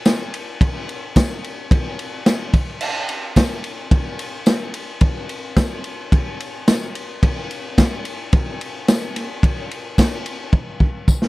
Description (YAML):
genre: rock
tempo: 109 BPM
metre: 4/4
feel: straight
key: none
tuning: none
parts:
  - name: vintage drum kit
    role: drums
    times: 0.1-11.3 s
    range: crash cymbal, kick drum, ride cymbal, snare drum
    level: -18 LUFS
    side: equal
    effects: none
  - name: tambourine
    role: percussion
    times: 0.1-11.2 s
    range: none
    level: -33 LUFS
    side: left 5 dB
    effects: none
room: little or no reverb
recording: dry, close 1970s-style studio recording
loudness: -18 LUFS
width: side -20 dB against mid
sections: 0.0-11.3 A section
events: drum fill 10.5-11.3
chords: none